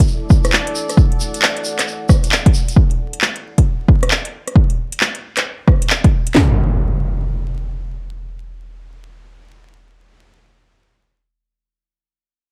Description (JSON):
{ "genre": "UK garage, two-step garage", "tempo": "134 BPM", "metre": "4/4", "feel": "swing 64% on 16ths", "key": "unclear", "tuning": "A4 = 435 Hz", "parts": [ { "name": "house drum kit", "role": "drums", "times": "0.0-6.5 s", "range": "handclaps, kick drum, snare drum", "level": "-15 LUFS", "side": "equal", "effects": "overdrive" }, { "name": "house drum kit", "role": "drums", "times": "0.0-6.3 s", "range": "handclaps, hi-hat, rim click", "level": "-19 LUFS", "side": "equal", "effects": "overdrive" }, { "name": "tube shaker", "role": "percussion", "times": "0.0-2.8 s", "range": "none", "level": "-30 LUFS", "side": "equal", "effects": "none" }, { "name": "deep dark ambient pad", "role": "texture", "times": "0.0-2.8 s", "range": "E4 to F#5", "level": "-31 LUFS", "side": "equal", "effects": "chorus, built-in reverb, sidechain pumping" }, { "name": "impact", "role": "sound effects", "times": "6.3-10.5 s", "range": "none", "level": "-21 LUFS", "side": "equal", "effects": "none" } ], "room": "digital ambience", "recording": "vinyl crackle", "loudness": "-16 LUFS", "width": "mono", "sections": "0.0-6.3 A section; 6.3-9.9 B section", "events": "fade-out on ambient pad 0.0-2.8", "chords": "0.0 Esus2; 2.8 N.C." }